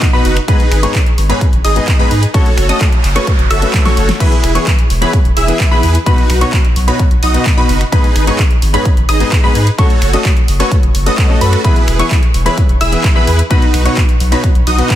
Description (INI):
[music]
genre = EDM, festival progressive house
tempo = 129 BPM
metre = 4/4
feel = straight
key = E major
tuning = A4 = 440 Hz
[part]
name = warm concert grand piano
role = accompaniment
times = 0.0-14.9 s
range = G#2 to C#5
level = -19 LUFS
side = left 4 dB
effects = vintage 12-bit sampler grit, sidechain pumping, tape echo
[part]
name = wide unison pluck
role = arpeggios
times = 0.0-15.0 s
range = B5 to E6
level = -20 LUFS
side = equal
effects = vintage 12-bit sampler grit, sidechain pumping, tape echo
[part]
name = supersaw chords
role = riff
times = 0.0-15.0 s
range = D#4 to E5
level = -18 LUFS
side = right 2 dB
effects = lush chorus, cassette tape, sidechain pumping, tape echo
[part]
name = big-room dance drum kit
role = drums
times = 0.0-15.0 s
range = crash cymbal, finger snaps, handclaps, hi-hat, snare drum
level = -21 LUFS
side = right 1 dB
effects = none
[part]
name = electronic kick drum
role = drums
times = 0.0-15.0 s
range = none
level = -12 LUFS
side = equal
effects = none
[part]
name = saturated sub bass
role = bass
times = 0.2-14.8 s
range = E1 to G#2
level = -14 LUFS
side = equal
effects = sidechain pumping
[part]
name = noise sweep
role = sound effects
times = 2.7-4.2 s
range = none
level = -25 LUFS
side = right 5 dB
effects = none
[sound]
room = digital ambience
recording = dense, heavily limited modern master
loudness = -9 LUFS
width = side -12 dB against mid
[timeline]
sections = 0.0-15.0 A section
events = noise sweep 2.7-4.2; drum fill 3.7-4.2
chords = 0.5 G#m; 2.3 F#m; 4.2 E; 6.1 B; 7.9 G#m; 9.8 F#m; 11.6 E; 13.5 B